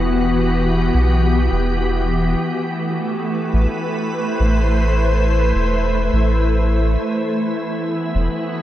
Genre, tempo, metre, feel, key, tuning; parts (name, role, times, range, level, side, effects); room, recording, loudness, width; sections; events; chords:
ambient dub; 104 BPM; 4/4; straight; A dorian; A4 = 440 Hz
soft additive organ-like pad; sustained chords; 0.0-8.6 s; E3 to C5; -19 LUFS; equal; ensemble chorus, built-in reverb
soft dub sub bass; bass; 0.0-8.3 s; E1 to B1; -17 LUFS; equal
moderate huge ambient reverb, RT60 7.0 s; dreamy mix soaked in reverb; -16 LUFS; side -13 dB against mid
0.0-2.4 A section; 2.4-8.6 B section
0.0 Emadd9; 2.4 Am7; 7.0 Esus2